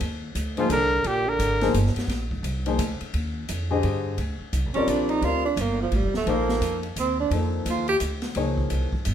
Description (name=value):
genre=modal jazz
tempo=172 BPM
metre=3/4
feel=swing 62% on 8ths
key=Eb major, Bb major from 4.2 s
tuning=A4 = 435 Hz
part: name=upright bass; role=bass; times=0.0-9.1 s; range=D1 to G2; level=-27 LUFS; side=equal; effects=none
part: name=open jazz drum kit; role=drums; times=0.0-9.1 s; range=hi-hat, kick drum, ride cymbal, snare drum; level=-34 LUFS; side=left 1 dB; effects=none
part: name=breathy trumpet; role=melody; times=0.6-1.8 s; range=F4 to Bb4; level=-24 LUFS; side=left 1 dB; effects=none
part: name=breathy tenor saxophone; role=second line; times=0.6-1.8, 4.7-8.0 s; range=Ab2 to G4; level=-26 LUFS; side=right 5 dB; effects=none
part: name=warm baby grand piano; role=accompaniment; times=0.6-8.9 s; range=D3 to Eb5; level=-27 LUFS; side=left 4 dB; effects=none
room=moderate large studio reverb, RT60 0.9 s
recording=minimal, uncompressed stereo recording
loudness=-22 LUFS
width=side -9 dB against mid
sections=0.0-4.2 A section; 4.2-9.1 B section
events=tenor saxophone solo 4.2-9.1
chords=0.0 Ebmaj9; 4.2 Bbmaj9; 8.4 Dbmaj9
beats=| 0.01 0.36 0.70 | 1.05 1.40 1.75 | 2.10 2.44 2.79 | 3.14 3.49 3.84 | 4.18 4.53 4.88 | 5.23 5.58 5.93 | 6.27 6.62 6.97 | 7.32 7.67 8.02 | 8.36 8.71 9.06